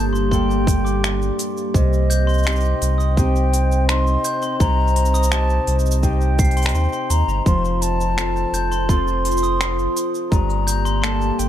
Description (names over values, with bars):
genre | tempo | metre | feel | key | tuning
folktronica | 84 BPM | 4/4 | straight | C dorian | A4 = 440 Hz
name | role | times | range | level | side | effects
mellow hollow jazz flute | melody | 0.0-11.5 s | Eb5 to C6 | -25 LUFS | left 2 dB | ping-pong delay
glockenspiel with soft plastic mallets | second line | 0.0-11.1 s | Bb5 to C7 | -30 LUFS | right 2 dB | ping-pong delay
warbly tape-like pad | sustained chords | 0.0-11.5 s | G3 to G5 | -26 LUFS | equal | chorus, built-in reverb
Celtic harp | arpeggios | 0.0-11.5 s | G2 to A4 | -26 LUFS | left 2 dB | none
warm sub bass | bass | 0.0-11.5 s | F1 to Eb2 | -19 LUFS | equal | none
organic electronic drum kit | drums | 0.2-11.5 s | cabasa, finger snaps, hi-hat | -26 LUFS | equal | none
electronic kick drum | drums | 0.3-10.5 s | none | -17 LUFS | equal | none
room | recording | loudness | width
digital ambience | none | -16 LUFS | side -11 dB against mid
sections
0.0-11.5 A section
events
none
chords
0.0 Gmadd9; 1.7 Cm; 7.5 F; 10.3 Gmadd9